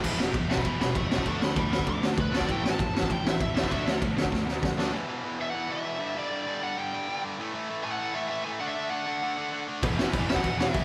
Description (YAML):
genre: punk rock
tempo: 196 BPM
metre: 4/4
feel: straight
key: unclear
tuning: A4 = 439 Hz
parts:
  - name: biting overdriven guitar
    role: riff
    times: 0.0-4.9, 9.8-10.8 s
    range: A2 to B4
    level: -41 LUFS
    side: equal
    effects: none
  - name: distorted electric guitar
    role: riff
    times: 0.0-10.8 s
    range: E2 to D4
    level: -35 LUFS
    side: equal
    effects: overdrive, slapback echo
  - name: overdriven electric guitar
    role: riff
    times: 0.0-4.9, 9.8-10.8 s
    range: E2 to D4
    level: -40 LUFS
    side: equal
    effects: none
  - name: growling picked electric bass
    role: bass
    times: 0.0-4.9, 9.8-10.8 s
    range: E1 to E2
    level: -37 LUFS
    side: equal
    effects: overdrive
  - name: raw garage drum kit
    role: drums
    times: 0.0-4.9, 9.8-10.8 s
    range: crash cymbal, kick drum, ride cymbal, snare drum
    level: -30 LUFS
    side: equal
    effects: none
  - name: biting lead guitar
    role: melody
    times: 0.5-10.8 s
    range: B4 to D6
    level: -35 LUFS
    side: equal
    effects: overdrive, slapback echo
room: moderate lush hall reverb, RT60 1.5 s, small room ambience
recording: big arena sound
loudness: -28 LUFS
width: mono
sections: 0.0-4.9 A section; 4.9-10.8 B section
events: lead electric guitar solo 0.0-4.9; drum fill 4.3-4.9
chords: 0.0 E; 1.3 D; 2.5 A; 3.7 D; 4.9 E5; 6.0 G5; 7.4 A5; 8.6 D; 9.8 E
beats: | 0.04 0.34 0.65 0.96 | 1.26 1.57 1.87 2.18 | 2.48 2.79 3.10 3.40 | 3.71 4.02 4.32 4.63 | 4.94 5.24 5.55 5.86 | 6.16 6.47 6.78 7.08 | 7.39 7.69 8.00 8.30 | 8.61 8.92 9.22 9.53 | 9.83 10.14 10.44 10.75